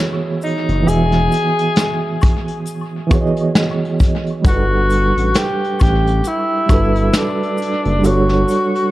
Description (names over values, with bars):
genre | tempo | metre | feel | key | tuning
lo-fi hip hop | 67 BPM | 4/4 | swing 59% on 16ths | unclear | A4 = 440 Hz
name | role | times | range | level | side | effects
reed electric piano | accompaniment | 0.0-8.9 s | E3 to F#5 | -19 LUFS | right 3 dB | fast tremolo, cassette tape, low-pass filter
breathy tenor saxophone | melody | 0.4-8.9 s | D4 to G#4 | -19 LUFS | left 1 dB | low-pass filter, tape echo
tube shaker and woodblock | percussion | 0.4-8.7 s | none | -36 LUFS | left 4 dB | tape echo
vintage brush drum kit | drums | 0.5-8.9 s | hi-hat, kick drum, snare drum | -17 LUFS | equal | none
smooth synth bass | bass | 0.7-8.4 s | E1 to A1 | -17 LUFS | equal | none
room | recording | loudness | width
light reverb, studio reverb | echo-heavy mix | -14 LUFS | side -16 dB against mid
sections
0.0-8.9 A section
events
none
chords
0.0 Emaj9; 4.5 Gmaj9